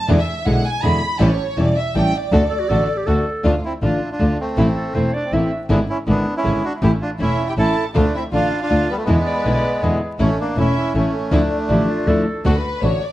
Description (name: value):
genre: tango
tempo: 160 BPM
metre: 3/4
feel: rubato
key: D major, D minor from 3.5 s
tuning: A4 = 441 Hz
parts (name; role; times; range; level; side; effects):
- dark studio violin section; second line; 0.0-3.3, 7.2-13.1 s; A4 to B5; -25 LUFS; equal; none
- flamenco guitar; accompaniment; 0.1-13.0 s; B2 to G#4; -21 LUFS; left 1 dB; none
- rich studio string section; stabs; 0.1-13.0 s; F3 to A4; -30 LUFS; right 2 dB; none
- clear double bass; bass; 0.1-13.0 s; E1 to E2; -20 LUFS; equal; none
- growling clarinet; second line; 2.5-5.6, 9.3-12.4 s; F4 to E5; -26 LUFS; right 2 dB; none
- bandoneon; melody; 3.5-12.2 s; G3 to A4; -22 LUFS; right 1 dB; tape echo
room: moderate large studio reverb, RT60 1.1 s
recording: dark, warm production, vinyl crackle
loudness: -16 LUFS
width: side -15 dB against mid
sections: 0.0-3.5 A section; 3.5-12.4 B section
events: violin section solo 0.0-3.5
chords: 0.1 E7; 1.2 A7; 2.3 D; 3.5 Dm; 4.6 Am; 5.7 E7/G#; 6.8 A; 8.0 Dm; 9.1 E7; 10.2 A; 11.3 Dmadd9; 12.4 D